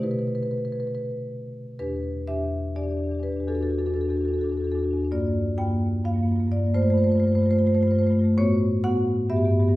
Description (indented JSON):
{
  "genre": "classical, contemporary piece for solo marimba",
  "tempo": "256 BPM (eighths)",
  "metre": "7/8",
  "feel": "rubato",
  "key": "E minor",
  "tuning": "A4 = 439 Hz",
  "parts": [
    { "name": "marimba with medium hard mallets", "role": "solo", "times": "0.0-9.8 s", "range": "E2 to G5", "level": "-22 LUFS", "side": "equal", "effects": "none" }
  ],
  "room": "wet recital hall reverb, RT60 1.3 s",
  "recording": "heard from further back in the room",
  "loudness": "-22 LUFS",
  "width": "side -17 dB against mid",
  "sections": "0.0-1.8 A section; 1.8-9.8 B section",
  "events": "none",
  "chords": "0.0 Baug; 1.8 Em7; 3.5 Dadd9/E; 5.1 Gm7; 6.8 Fadd9/G; 8.4 A69",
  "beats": "| 0.03 0.28 0.54 0.79 1.04 1.30 1.55 | 1.79 2.03 2.27 2.51 2.75 2.99 3.23 | 3.47 3.71 3.94 4.18 4.41 4.64 4.88 | 5.11 5.35 5.58 5.81 6.05 6.29 6.52 | 6.75 6.98 7.21 7.44 7.67 7.91 8.14 | 8.38 8.61 8.84 9.07 9.30 9.53"
}